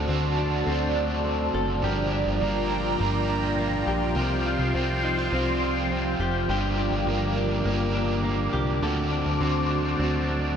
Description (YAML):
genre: dream pop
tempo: 103 BPM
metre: 4/4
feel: straight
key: G minor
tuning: A4 = 440 Hz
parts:
  - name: overdriven electric guitar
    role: accompaniment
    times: 0.0-10.6 s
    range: G2 to Bb4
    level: -29 LUFS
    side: right 4 dB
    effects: harmonic tremolo, wide subtle chorus
  - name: phased analog pad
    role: sustained chords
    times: 0.0-10.6 s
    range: F4 to D6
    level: -28 LUFS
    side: equal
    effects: phaser, chorus
  - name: direct-recorded clean electric guitar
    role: arpeggios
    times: 0.0-10.6 s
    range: G2 to A4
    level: -29 LUFS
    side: left 3 dB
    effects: lush chorus, ping-pong delay
  - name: plucky analog bass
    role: bass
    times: 0.0-10.6 s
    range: F1 to D2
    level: -29 LUFS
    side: equal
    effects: none
  - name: backwards swelling texture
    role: texture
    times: 0.2-10.5 s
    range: Bb4 to C6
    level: -42 LUFS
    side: right 4 dB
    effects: none
room: moderate scoring stage reverb, RT60 1.8 s, digital ambience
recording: dark, warm production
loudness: -23 LUFS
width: side -8 dB against mid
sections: 0.0-10.6 A section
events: none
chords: 0.0 D7; 1.8 Gm7; 4.2 Csus4; 6.5 Gm7; 8.8 D7